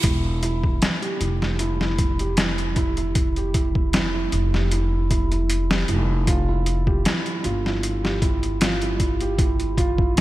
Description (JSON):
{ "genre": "trip hop", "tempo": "77 BPM", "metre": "4/4", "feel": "swing 53% on 16ths", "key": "unclear", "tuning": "A4 = 441 Hz", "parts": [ { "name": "felt-muted upright piano", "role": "arpeggios", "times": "0.0-10.2 s", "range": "E4 to G4", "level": "-26 LUFS", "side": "right 3 dB", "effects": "vintage 12-bit sampler grit, ping-pong delay" }, { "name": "upright bass", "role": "bass", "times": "0.0-10.2 s", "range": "E1 to G1", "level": "-24 LUFS", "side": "equal", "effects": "tube saturation" }, { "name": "trip hop sampler-style drum kit", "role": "drums", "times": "0.0-10.2 s", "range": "hi-hat, kick drum, snare drum", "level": "-22 LUFS", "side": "equal", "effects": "overdrive, gated reverb" } ], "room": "light reverb, studio ambience", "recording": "bright 1980s-style digital production, vinyl crackle", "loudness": "-19 LUFS", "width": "side -16 dB against mid", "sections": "0.0-10.2 A section", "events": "none", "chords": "0.0 Em; 6.3 Fsus2" }